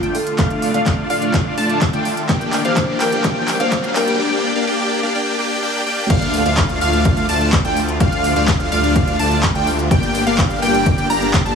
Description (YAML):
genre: EDM, festival progressive house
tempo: 126 BPM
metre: 4/4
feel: straight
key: unclear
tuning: A4 = 440 Hz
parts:
  - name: lush unison pad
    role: sustained chords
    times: 0.0-11.6 s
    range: D3 to G4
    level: -28 LUFS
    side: left 1 dB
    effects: none
  - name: plucky unison lead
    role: arpeggios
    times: 0.0-11.6 s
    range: F5 to Bb5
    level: -22 LUFS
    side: right 1 dB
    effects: analog chorus, cassette tape, sidechain pumping, digital delay
  - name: dense compressed supersaw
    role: riff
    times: 0.0-11.6 s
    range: A3 to Bb5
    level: -19 LUFS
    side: left 1 dB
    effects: sidechain pumping, low-pass filter, digital delay
  - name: big-room dance drum kit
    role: drums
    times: 0.0-11.6 s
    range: crash cymbal, handclaps, hi-hat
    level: -24 LUFS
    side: equal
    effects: high-pass filter on snare, high-pass filter on hats, high-pass filter on cymbals, high-pass filter on room
  - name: riser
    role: sound effects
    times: 0.3-4.2 s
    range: none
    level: -28 LUFS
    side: left 1 dB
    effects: none
  - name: marimba with medium mallets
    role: melody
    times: 0.1-4.1 s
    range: A4 to D5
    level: -26 LUFS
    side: left 1 dB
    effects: digital delay
  - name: electronic kick drum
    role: drums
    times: 0.4-11.4 s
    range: none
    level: -18 LUFS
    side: left 1 dB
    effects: none
  - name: detuned saw bass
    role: bass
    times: 6.1-11.6 s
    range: G1 to D2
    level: -22 LUFS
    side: equal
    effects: sidechain pumping
room: moderate huge ambient reverb, RT60 4.0 s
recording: heavily compressed radio sound, high-pass filter, small room ambience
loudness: -15 LUFS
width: side -6 dB against mid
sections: 0.0-6.1 A section; 6.1-11.6 B section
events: build-up 0.0-6.1; drum fill 0.0-4.2; filter sweep on supersaw synth 0.0-6.1; filter sweep 0.0-6.1; riser 0.3-4.2; drop 6.1-11.6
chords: 0.0 Dm; 2.3 Gm; 6.1 Dm; 9.9 Gm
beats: | 0.39 0.86 1.34 1.81 | 2.29 2.77 3.24 3.72 | 4.20 4.67 5.15 5.62 | 6.10 6.58 7.05 7.53 | 8.01 8.48 8.96 9.43 | 9.91 10.39 10.86 11.34